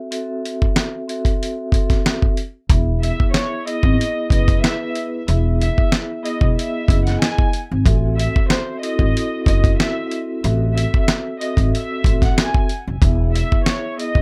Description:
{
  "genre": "hip hop, boom-bap hip-hop",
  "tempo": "93 BPM",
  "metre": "4/4",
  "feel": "swing 54% on 16ths",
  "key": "E major",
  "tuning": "A4 = 440 Hz",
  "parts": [
    { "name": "vibraphone with soft mallets", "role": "accompaniment", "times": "0.0-14.2 s", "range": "B3 to E5", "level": "-27 LUFS", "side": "equal", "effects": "cassette tape, high-pass filter, low-pass filter" },
    { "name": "dusty soul sampler-style drum kit", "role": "drums", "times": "0.1-14.2 s", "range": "hi-hat, kick drum, snare drum", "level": "-19 LUFS", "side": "equal", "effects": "none" },
    { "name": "upright bass", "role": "bass", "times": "2.7-14.2 s", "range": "E1 to A1", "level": "-21 LUFS", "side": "equal", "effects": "none" },
    { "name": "warm studio violin section", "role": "melody", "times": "3.0-14.2 s", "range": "C5 to G#5", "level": "-29 LUFS", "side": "equal", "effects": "high-pass filter, low-pass filter, tape echo" }
  ],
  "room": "little or no reverb",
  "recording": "none",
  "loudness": "-19 LUFS",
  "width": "mono",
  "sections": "0.0-2.7 A section; 2.7-14.2 B section",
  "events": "none",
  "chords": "0.0 Am6; 2.7 Emaj7; 7.9 Am6; 13.0 Emaj7"
}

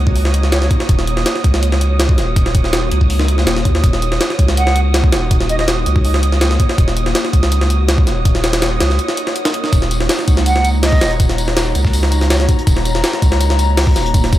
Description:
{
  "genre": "drum and bass, jungle",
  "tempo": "163 BPM",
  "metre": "4/4",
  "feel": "straight",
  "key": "Eb minor",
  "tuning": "A4 = 440 Hz",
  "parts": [
    { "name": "ethereal airy pad", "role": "sustained chords", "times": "0.0-14.4 s", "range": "Bb3 to Db5", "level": "-24 LUFS", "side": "equal", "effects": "ensemble chorus, built-in reverb, phaser" },
    { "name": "saturated sub bass", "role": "bass", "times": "0.0-14.4 s", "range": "Eb1 to Eb2", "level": "-16 LUFS", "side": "equal", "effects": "none" },
    { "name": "wind-like tuned noise texture", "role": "texture", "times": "0.0-14.4 s", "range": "Bb5 to Eb6", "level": "-26 LUFS", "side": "right 2 dB", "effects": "built-in reverb" },
    { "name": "jungle sampler-style drum kit", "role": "drums", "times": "0.1-14.4 s", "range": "hi-hat, kick drum, snare drum", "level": "-15 LUFS", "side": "equal", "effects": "none" },
    { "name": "breathy hollow jazz flute", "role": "melody", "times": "0.5-0.7, 4.6-5.6, 10.5-12.5 s", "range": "Db5 to Gb5", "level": "-23 LUFS", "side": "right 2 dB", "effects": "dub echo" },
    { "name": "crunchy breakbeat drum kit", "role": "drums", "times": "9.7-14.4 s", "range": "hi-hat, snare drum, tambourine", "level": "-27 LUFS", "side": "equal", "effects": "high-pass filter on hats, high-pass filter on snare, high-pass filter on perc, high-pass filter on room" }
  ],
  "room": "little or no reverb",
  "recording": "dry, gritty hardware recording",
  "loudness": "-12 LUFS",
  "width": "side -14 dB against mid",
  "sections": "0.0-14.4 A section",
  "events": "break 9.0-9.7",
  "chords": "0.0 Ebm7"
}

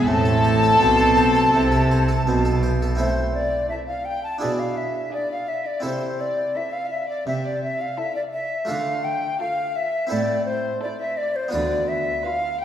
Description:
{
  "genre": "classical, baroque-style concerto movement with solo episodes",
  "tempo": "84 BPM",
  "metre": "4/4",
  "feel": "straight",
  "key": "A minor",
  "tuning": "A4 = 440 Hz",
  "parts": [
    { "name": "rich chamber violin section", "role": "second line", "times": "0.0-12.6 s", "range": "G#4 to B4", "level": "-26 LUFS", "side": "left 3 dB", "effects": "none" },
    { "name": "harpsichord", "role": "accompaniment", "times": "0.0-12.6 s", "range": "D2 to C5", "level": "-29 LUFS", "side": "right 2 dB", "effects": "none" },
    { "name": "warm chamber viola section", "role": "accompaniment", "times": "0.0-12.6 s", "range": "C4 to F4", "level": "-27 LUFS", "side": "equal", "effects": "none" },
    { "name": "rich chamber cello section", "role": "bass", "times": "0.0-12.1 s", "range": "D2 to D3", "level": "-26 LUFS", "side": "right 3 dB", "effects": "none" },
    { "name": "rich chamber double bass section", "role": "bass", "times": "0.0-3.0 s", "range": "A1 to C2", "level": "-23 LUFS", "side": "right 1 dB", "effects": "none" },
    { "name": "hollow concert flute", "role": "melody", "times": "0.1-12.6 s", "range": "C5 to A5", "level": "-24 LUFS", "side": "left 1 dB", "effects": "none" },
    { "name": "warm chamber violin section", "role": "melody", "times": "0.1-12.6 s", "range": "C5 to A5", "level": "-30 LUFS", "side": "left 3 dB", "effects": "none" }
  ],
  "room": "wet concert hall reverb, RT60 1.8 s",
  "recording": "heard from further back in the room",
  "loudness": "-19 LUFS",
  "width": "side -10 dB against mid",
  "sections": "0.0-3.0 A section; 3.0-12.6 B section",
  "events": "none",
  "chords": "0.1 Am; 4.4 E7/B; 5.9 Am/C; 8.7 Dm; 10.1 Am; 11.5 Bdim/D"
}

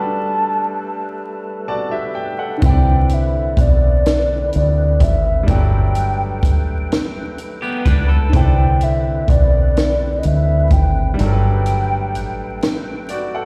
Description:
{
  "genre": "slow six-eight R&B",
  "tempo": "42 BPM (dotted quarters)",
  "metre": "6/8",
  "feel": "straight",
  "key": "G major",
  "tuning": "A4 = 440 Hz",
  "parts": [
    { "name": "hollow clarinet-like synth lead", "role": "melody", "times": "0.0-12.6 s", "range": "D5 to A5", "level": "-24 LUFS", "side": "equal", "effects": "chorus, tape echo" },
    { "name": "clear grand piano", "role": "accompaniment", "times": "0.0-13.5 s", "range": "D3 to A5", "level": "-28 LUFS", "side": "equal", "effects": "none" },
    { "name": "percussive tonewheel organ", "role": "sustained chords", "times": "0.0-13.5 s", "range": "D3 to G5", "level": "-31 LUFS", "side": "equal", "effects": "chorus vibrato, slow rotary speaker" },
    { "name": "deep dub fingered electric bass", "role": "bass", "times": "2.6-13.5 s", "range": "G1 to D2", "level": "-18 LUFS", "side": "equal", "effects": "none" },
    { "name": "compact cocktail drum kit", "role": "drums", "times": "2.6-13.3 s", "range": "hi-hat, kick drum, snare drum", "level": "-19 LUFS", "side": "equal", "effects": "none" },
    { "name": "electric guitar at the edge of break-up", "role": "second line", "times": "7.6-8.5 s", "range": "B3 to B4", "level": "-27 LUFS", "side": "equal", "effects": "spring reverb, slapback echo" }
  ],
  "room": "studio ambience",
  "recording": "live gig heard through the venue's PA, recital hall reverb, vinyl crackle",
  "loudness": "-17 LUFS",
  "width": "mono",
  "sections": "0.0-13.5 A section",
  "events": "grand piano fill 1.2-2.6; break 11.2-13.5",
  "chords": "0.0 Gmaj9; 2.6 Cmaj9; 5.5 Gmaj9; 8.3 Cmaj9; 11.2 Gmaj9"
}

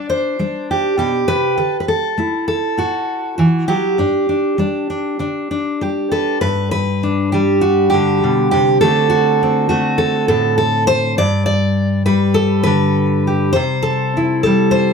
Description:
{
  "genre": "folk, solo fingerstyle acoustic guitar",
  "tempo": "100 BPM",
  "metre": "4/4",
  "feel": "straight",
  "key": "G major",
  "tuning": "A4 = 440 Hz",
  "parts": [
    { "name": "fingerpicked steel-string acoustic guitar", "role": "solo", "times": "0.0-14.9 s", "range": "G2 to D5", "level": "-14 LUFS", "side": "equal", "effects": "slapback echo" }
  ],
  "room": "moderate studio reverb, RT60 0.5 s",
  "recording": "none",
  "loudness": "-14 LUFS",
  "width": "side -5 dB against mid",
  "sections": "0.0-6.4 A section; 6.4-14.9 B section",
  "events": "none",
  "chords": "0.0 Csus2; 1.6 Dadd9; 4.0 G5; 6.4 Gmaj7; 8.8 D7; 11.2 G; 13.5 C"
}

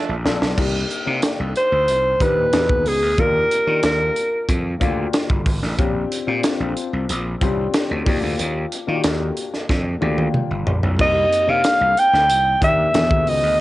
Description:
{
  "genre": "polished 1980s jazz-funk pop",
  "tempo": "92 BPM",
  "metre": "4/4",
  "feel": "straight",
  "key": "unclear",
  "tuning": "A4 = 440 Hz",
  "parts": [
    { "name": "dark concert grand piano", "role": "accompaniment", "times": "0.0-13.6 s", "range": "Bb2 to A4", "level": "-26 LUFS", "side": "left 6 dB", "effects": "wide subtle chorus, cassette tape" },
    { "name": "gritty slap bass", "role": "bass", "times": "0.1-13.6 s", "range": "G1 to Eb3", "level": "-23 LUFS", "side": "equal", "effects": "overdrive" },
    { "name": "crisp fusion drum kit", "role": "drums", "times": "0.3-13.4 s", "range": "crash cymbal, hi-hat, kick drum, snare drum, toms", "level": "-22 LUFS", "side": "equal", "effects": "cassette tape" },
    { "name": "breathy alto saxophone", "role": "melody", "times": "1.6-4.5, 11.0-13.6 s", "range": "G#4 to G5", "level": "-16 LUFS", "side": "equal", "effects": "cassette tape, plate reverb" }
  ],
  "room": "moderate booth ambience, RT60 0.2 s",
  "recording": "home recording on cassette, nothing above 10.8 kHz",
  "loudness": "-16 LUFS",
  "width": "side -17 dB against mid",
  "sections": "0.6-13.6 A section",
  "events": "drum fill 0.0-0.6, 9.7-11.0",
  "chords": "0.0 Bbmaj9; 0.6 Cm9; 2.5 Emaj9; 3.2 Ebmaj9; 5.8 Bb69; 8.1 Ebmaj9; 11.0 Cm9; 12.9 Emaj9"
}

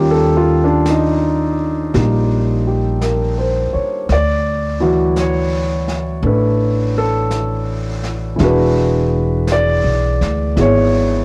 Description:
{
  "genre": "jazz ballad",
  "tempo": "56 BPM",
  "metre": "4/4",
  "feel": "swing 67% on 8ths",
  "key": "unclear",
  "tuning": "A4 = 440 Hz",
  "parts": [
    { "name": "warm concert grand piano", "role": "accompaniment", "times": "0.0-11.2 s", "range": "D#3 to D5", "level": "-18 LUFS", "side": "equal", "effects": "cassette tape" },
    { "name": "upright bass", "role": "bass", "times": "0.0-11.2 s", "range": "E1 to D#2", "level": "-20 LUFS", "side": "equal", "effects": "none" },
    { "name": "jazz brush drum kit", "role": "drums", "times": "0.9-11.2 s", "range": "brushed snare drum, hi-hat, snare drum", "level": "-33 LUFS", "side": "equal", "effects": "cassette tape" }
  ],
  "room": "moderate booth ambience, RT60 0.2 s",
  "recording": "home recording on cassette",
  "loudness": "-16 LUFS",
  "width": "mono",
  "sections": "0.0-11.2 A section",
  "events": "none",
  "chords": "0.0 D#9; 4.1 Dmaj9; 8.4 E9"
}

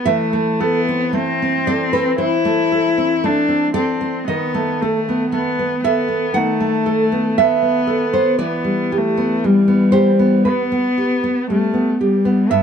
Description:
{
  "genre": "romantic duo for cello and classical guitar",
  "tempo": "58 BPM",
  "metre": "4/4",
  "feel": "rubato",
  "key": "E minor",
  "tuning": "A4 = 444 Hz",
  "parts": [
    { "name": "rich cello", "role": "melody", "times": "0.0-12.6 s", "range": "G3 to E4", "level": "-18 LUFS", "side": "left 3 dB", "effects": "none" },
    { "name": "nylon-string guitar", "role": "accompaniment", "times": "0.0-12.6 s", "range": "G2 to F#5", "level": "-18 LUFS", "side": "right 2 dB", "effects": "none" }
  ],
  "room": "light reverb",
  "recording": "dark, warm production",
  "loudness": "-15 LUFS",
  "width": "side -7 dB against mid",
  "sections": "0.0-12.6 A section",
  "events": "none",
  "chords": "0.1 C69/E; 4.3 B7/D#; 8.4 Em"
}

